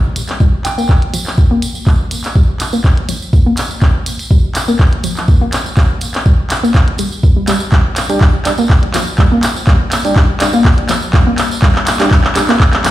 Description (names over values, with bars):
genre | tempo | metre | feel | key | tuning
minimal techno | 123 BPM | 4/4 | swing 54% on 16ths | G minor | A4 = 445 Hz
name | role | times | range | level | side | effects
minimal click drum kit | drums | 0.2-12.9 s | handclaps, hi-hat | -18 LUFS | equal | none
tambourine | percussion | 0.2-12.9 s | none | -26 LUFS | right 2 dB | none
hollow square pluck | riff | 0.4-12.9 s | F3 to Bb3 | -18 LUFS | left 1 dB | chorus, phaser, sidechain pumping, tape echo
electronic kick drum | drums | 0.4-12.7 s | none | -10 LUFS | equal | none
soft synth bell | melody | 0.6-0.9 s | G5 | -24 LUFS | right 3 dB | chorus, phaser, vintage 12-bit sampler grit, ping-pong delay
percussive organ stab | stabs | 8.1-12.4 s | G3 to G4 | -18 LUFS | right 1 dB | analog chorus, ping-pong delay
room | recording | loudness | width
moderate small room reverb, RT60 0.5 s | played on a big sound system in a bare room, stone room reverb | -10 LUFS | side -14 dB against mid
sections
0.0-12.9 A section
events
build-up 0.0-12.9; drum fill 0.0-12.9; filter sweep on synth arpeggio sound 0.0-12.9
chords
0.0 G5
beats
0.41 0.89 1.38 | 1.87 2.36 2.84 3.33 | 3.82 4.31 4.79 5.28 | 5.77 6.26 6.75 7.23 | 7.72 8.21 8.70 9.19 | 9.67 10.16 10.65 11.14 | 11.62 12.11 12.60